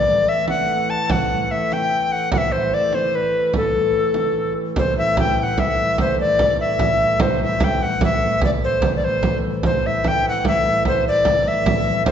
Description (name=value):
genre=medieval dance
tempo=98 BPM (dotted quarters)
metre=6/8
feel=straight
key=A dorian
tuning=A4 = 441 Hz
part: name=bright reedy tenor recorder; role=melody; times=0.0-12.1 s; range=A4 to A5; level=-18 LUFS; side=left 1 dB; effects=none
part: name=hand-pumped harmonium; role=drone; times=0.0-12.1 s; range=A2 to E3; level=-26 LUFS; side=equal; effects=none
part: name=frame drum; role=percussion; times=0.1-12.1 s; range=none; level=-22 LUFS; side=right 2 dB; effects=none
room=wet recital hall reverb, RT60 1.7 s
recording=heard from further back in the room, nothing above 7.9 kHz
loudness=-17 LUFS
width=side -8 dB against mid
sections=0.0-4.8 A section; 4.8-12.1 B section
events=none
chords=none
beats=0.49 | 1.10 1.71 | 2.32 2.93 | 3.54 4.16 | 4.77 5.38 | 5.99 6.59 | 7.20 7.81 | 8.42 9.03 | 9.63 10.24 | 10.85 11.45 | 12.06